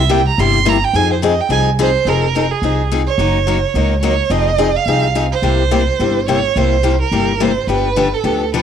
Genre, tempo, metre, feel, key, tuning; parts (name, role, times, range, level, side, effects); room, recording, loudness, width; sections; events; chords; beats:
acoustic string swing (jazz manouche); 213 BPM; 4/4; swing 57% on 8ths; F minor; A4 = 440 Hz
warm violin; melody; 0.0-8.6 s; Ab4 to C6; -17 LUFS; right 9 dB; plate reverb
upright bass; bass; 0.0-8.6 s; F1 to F2; -18 LUFS; right 1 dB
picked steel-string acoustic guitar; accompaniment; 0.1-8.6 s; C3 to Ab4; -17 LUFS; left 7 dB; plate reverb
moderate studio reverb, RT60 0.5 s; home recording on cassette; -13 LUFS; side -8 dB against mid
0.0-2.1 A section; 2.1-8.6 B section
violin solo 0.0-2.1
0.0 C7; 0.9 Fm7; 3.2 Gb6; 4.3 Fm7; 5.4 C7; 7.7 G7
0.11 0.39 0.67 | 0.94 1.22 1.50 1.78 | 2.06 2.34 2.62 2.90 | 3.19 3.47 3.75 4.03 | 4.31 4.59 4.87 5.15 | 5.43 5.72 6.00 6.28 | 6.56 6.84 7.12 7.41 | 7.69 7.97 8.25 8.53